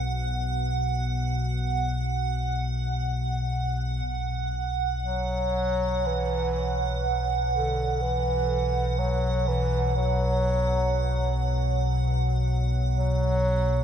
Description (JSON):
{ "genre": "ambient", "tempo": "61 BPM", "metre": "4/4", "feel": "straight", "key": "unclear", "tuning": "A4 = 440 Hz", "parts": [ { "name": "deep rumbling drone", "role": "drone", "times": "0.0-13.8 s", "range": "B1 to B2", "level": "-26 LUFS", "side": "equal", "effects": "built-in reverb" }, { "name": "icy glass pad", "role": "texture", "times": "0.0-13.8 s", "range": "F#5", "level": "-31 LUFS", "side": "right 4 dB", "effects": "chorus, built-in reverb" }, { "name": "clear bass clarinet", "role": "melody", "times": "5.0-13.8 s", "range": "D3 to F#3", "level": "-28 LUFS", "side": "equal", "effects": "ping-pong delay" } ], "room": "moderate huge ambient reverb, RT60 8.5 s", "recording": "dark, warm production", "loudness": "-24 LUFS", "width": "side -9 dB against mid", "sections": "0.0-4.0 A section; 4.0-13.8 B section", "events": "fade-out on ambient pad 4.0-13.8", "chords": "0.0 B5", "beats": "| 0.03 1.02 2.02 3.04 | 4.05 5.06 6.06 7.05 | 8.04 9.03 10.01 10.99 | 11.97 12.96" }